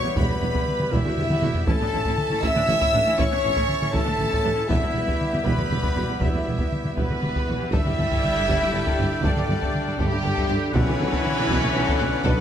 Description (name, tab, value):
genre	cinematic, epic orchestral film score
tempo	80 BPM (dotted quarters)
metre	6/8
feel	straight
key	unclear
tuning	A4 = 440 Hz
part	rich symphonic violin section	melody	0.0-12.4 s	G4 to E6	-35 LUFS	left 2 dB	none
part	rich studio violin section	second line	0.0-12.4 s	G4 to E6	-33 LUFS	left 2 dB	none
part	clear symphonic viola section	accompaniment	0.0-12.4 s	D3 to G4	-32 LUFS	equal	none
part	clear woodwind section	sustained chords	0.0-12.4 s	A3 to G5	-34 LUFS	left 2 dB	none
part	mellow French horn section	sustained chords	0.0-12.4 s	G3 to E5	-27 LUFS	left 2 dB	none
part	warm trombone section	sustained chords	0.0-12.4 s	D3 to C#4	-34 LUFS	right 3 dB	none
part	clear trumpet section	stabs	0.0-12.4 s	E4 to E5	-30 LUFS	right 2 dB	none
part	dark symphonic cello section	bass	0.0-12.3 s	E2 to B2	-31 LUFS	right 2 dB	none
part	mellow tuba	bass	0.2-12.3 s	E1 to B1	-32 LUFS	right 3 dB	none
part	rich symphonic double bass section	bass	0.2-12.3 s	E1 to B1	-30 LUFS	right 3 dB	none
part	solo taiko drums	drums	0.2-12.4 s	none	-26 LUFS	equal	none
part	sub drop	sound effects	7.9-9.2 s	none	-33 LUFS	equal	none
part	timpani	percussion	10.7-11.5 s	B2	-33 LUFS	equal	none
room	wet recital hall reverb, RT60 1.6 s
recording	none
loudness	-20 LUFS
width	side -9 dB against mid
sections	0.0-7.7 A section; 7.7-12.4 B section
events	drum fill 1.3-1.7; impact 7.7-9.2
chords	0.0 Em; 1.7 A; 4.7 Em; 7.7 Gsus2; 10.7 Bm7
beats	| 0.18 0.94 | 1.69 2.44 | 3.20 3.96 | 4.71 5.46 | 6.22 6.97 | 7.73 8.48 | 9.24 9.99 | 10.75 11.50 | 12.26